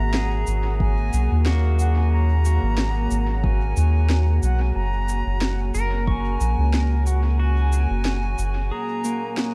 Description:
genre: ambient dub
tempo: 91 BPM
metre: 4/4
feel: swing 54% on 16ths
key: unclear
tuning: A4 = 441 Hz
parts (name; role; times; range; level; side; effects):
- bright wooden flute; melody; 0.0-9.5 s; F#5 to A#5; -33 LUFS; equal; dub echo
- deep dark ambient pad; sustained chords; 0.0-9.5 s; A#3 to F#5; -33 LUFS; equal; chorus, built-in reverb
- soft dub sub bass; bass; 0.0-8.7 s; F#1 to D#2; -22 LUFS; equal; none
- pedal steel guitar; arpeggios; 0.1-9.5 s; A#3 to C#6; -34 LUFS; equal; dub echo
- electronic snare drum and cabasa; drums; 0.1-9.5 s; none; -32 LUFS; equal; dub echo
- electronic kick drum; drums; 0.8-6.2 s; none; -26 LUFS; equal; none
room: digital ambience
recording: echo-heavy mix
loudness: -22 LUFS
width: mono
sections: 0.0-9.5 A section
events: none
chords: 0.0 G#7(no3); 4.8 F#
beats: 0.14 0.80 1.46 | 2.12 2.78 3.44 4.10 | 4.76 5.42 6.08 6.74 | 7.39 8.05 8.71 9.37

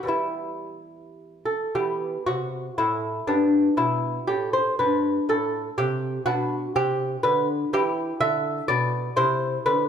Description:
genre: classical, baroque-style dance for lute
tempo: 106-125 BPM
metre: 3/4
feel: rubato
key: E minor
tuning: A4 = 440 Hz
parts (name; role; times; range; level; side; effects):
- lute; solo; 0.0-9.9 s; G2 to E5; -22 LUFS; equal; none
room: moderate recital hall reverb, RT60 1.5 s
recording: none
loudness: -22 LUFS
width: side -8 dB against mid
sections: 0.0-1.7 A section; 1.7-9.9 B section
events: none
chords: 0.1 Em; 3.3 Em/G; 4.8 G; 6.3 G/B; 7.7 Em; 9.2 C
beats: | 0.10 0.66 1.21 | 1.75 2.27 2.78 | 3.28 3.79 4.29 | 4.79 5.28 5.77 | 6.26 6.75 7.25 | 7.74 8.22 8.70 | 9.19 9.68

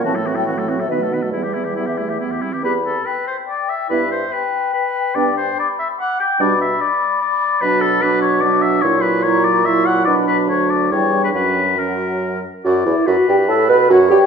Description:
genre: quick classical-period movement for wind quintet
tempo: 144 BPM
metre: 3/4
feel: rubato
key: E minor, B minor from 7.6 s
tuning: A4 = 440 Hz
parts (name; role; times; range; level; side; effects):
- mellow hollow concert flute; melody; 0.0-14.3 s; D#5 to D6; -24 LUFS; left 6 dB; none
- warm oboe; second line; 0.0-14.3 s; E4 to G5; -19 LUFS; left 4 dB; none
- mellow clarinet; accompaniment; 0.0-14.2 s; G3 to B4; -21 LUFS; right 8 dB; none
- warm French horn; accompaniment; 0.0-14.3 s; D#3 to B4; -21 LUFS; left 1 dB; none
- warm bassoon; bass; 0.0-14.3 s; D2 to B2; -22 LUFS; right 3 dB; none
room: wet recital hall reverb, RT60 1.6 s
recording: minimal, uncompressed stereo recording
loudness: -15 LUFS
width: side -6 dB against mid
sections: 0.0-2.6 A section; 2.6-12.7 B section; 12.7-14.3 A section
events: none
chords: 0.0 F#m7b5/A; 0.9 B7; 1.3 Em; 3.9 Em/G; 5.2 G; 6.4 G/B; 7.6 Bm; 8.8 F#7/A#; 10.1 Bm; 10.9 C#dim/E; 11.3 F#; 12.7 Bm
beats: | 0.04 0.46 0.88 | 1.32 1.75 2.19 | 2.63 3.05 3.48 | 3.90 4.32 4.74 | 5.15 5.57 5.98 | 6.40 6.81 7.21 | 7.62 8.03 8.44 | 8.84 9.26 9.66 | 10.07 10.49 10.91 | 11.35 11.79 12.22 | 12.65 13.07 13.49 | 13.90

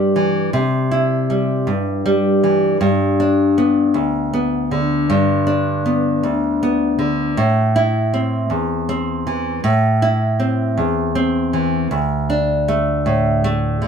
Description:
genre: folk, solo fingerstyle acoustic guitar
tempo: 53 BPM (dotted quarters)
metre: 6/8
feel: straight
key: G major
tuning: A4 = 439 Hz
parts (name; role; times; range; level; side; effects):
- nylon-string guitar; solo; 0.0-13.9 s; D2 to E4; -15 LUFS; equal; none
room: moderate studio reverb, RT60 0.5 s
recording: band playing live in one room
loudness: -15 LUFS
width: side -7 dB against mid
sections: 0.0-13.9 A section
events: none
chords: 0.0 C; 2.8 G; 7.4 Am; 11.9 D5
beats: | 0.53 1.67 | 2.81 3.95 | 5.08 6.22 | 7.36 8.50 | 9.64 10.78 | 11.92 13.06

